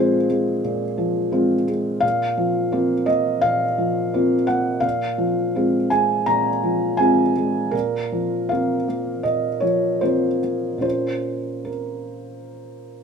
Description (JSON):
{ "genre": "neoclassical minimalist piano", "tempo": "71-88 BPM", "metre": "4/4", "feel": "rubato", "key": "Bb minor", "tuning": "A4 = 440 Hz", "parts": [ { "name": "felt-muted upright piano", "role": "solo", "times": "0.0-13.0 s", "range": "Bb2 to Bb5", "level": "-19 LUFS", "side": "equal", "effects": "none" } ], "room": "moderate stone room reverb, RT60 1.0 s", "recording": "minimal, uncompressed stereo recording", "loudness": "-19 LUFS", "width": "side -6 dB against mid", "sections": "0.0-13.0 A section", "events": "none", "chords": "0.0 Fm/Bb; 2.0 Bbsus2; 4.8 Fm/Bb; 7.7 Bbsus2; 10.8 Bbm" }